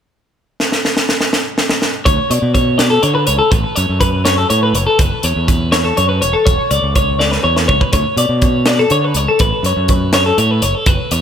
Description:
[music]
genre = math rock and midwest emo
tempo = 82 BPM (dotted quarters)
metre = 6/8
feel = straight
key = A major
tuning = A4 = 440 Hz
[part]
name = crisp fusion drum kit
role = drums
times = 0.6-11.2 s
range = hi-hat, kick drum, snare drum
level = -16 LUFS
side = equal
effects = none
[part]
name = twelve-string electric guitar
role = arpeggios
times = 2.1-11.2 s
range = A4 to D5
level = -15 LUFS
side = left 2 dB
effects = tape echo
[part]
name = growling fingered electric bass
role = bass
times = 2.1-11.2 s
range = E1 to D3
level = -17 LUFS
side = right 1 dB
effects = overdrive
[sound]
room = light reverb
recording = none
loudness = -12 LUFS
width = side -8 dB against mid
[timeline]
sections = 0.6-2.1 A section; 2.1-11.2 B section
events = drum fill 0.6-2.1, 7.2-7.9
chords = 0.6 N.C.; 2.1 D5; 3.5 A6; 5.0 F#m7; 6.5 E5; 7.9 D5; 9.4 A6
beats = | 0.60 1.33 | 2.07 2.80 | 3.53 4.27 | 5.00 5.73 | 6.46 7.20 | 7.93 8.66 | 9.39 10.13 | 10.86

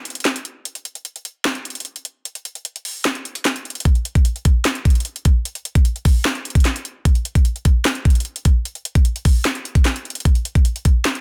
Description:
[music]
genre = hip hop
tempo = 150 BPM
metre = 4/4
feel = half-time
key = none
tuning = none
[part]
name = trap drum kit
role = drums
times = 0.1-11.2 s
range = handclaps, hi-hat, kick drum, snare drum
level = -19 LUFS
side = equal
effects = none
[sound]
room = little or no reverb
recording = dense, heavily limited modern master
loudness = -19 LUFS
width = mono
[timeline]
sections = 0.0-10.3 A section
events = break 0.0-3.9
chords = none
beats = 0.25 | 0.65 1.05 1.45 1.85 | 2.25 2.65 3.05 3.45 | 3.85 4.25 4.65 5.05 | 5.45 5.85 6.25 6.65 | 7.05 7.45 7.85 8.25 | 8.65 9.05 9.45 9.85 | 10.25 10.65 11.05

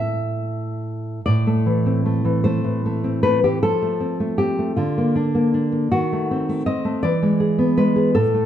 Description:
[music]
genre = romantic piece for solo classical guitar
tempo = 44-55 BPM (dotted quarters)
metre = 6/8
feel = rubato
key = A minor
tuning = A4 = 442 Hz
[part]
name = nylon-string guitar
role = solo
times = 0.0-8.5 s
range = A2 to E5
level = -18 LUFS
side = equal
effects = none
[sound]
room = moderate recital hall reverb, RT60 1.5 s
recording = dark, warm production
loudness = -18 LUFS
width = side -10 dB against mid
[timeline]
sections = 0.0-1.3 A section; 1.3-8.5 B section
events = none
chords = 0.0 A5; 1.3 Am; 3.6 F; 4.8 Bb/D; 5.9 D#dim7; 7.0 E7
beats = | 1.25 2.45 | 3.63 4.78 | 5.93 7.05 | 8.17

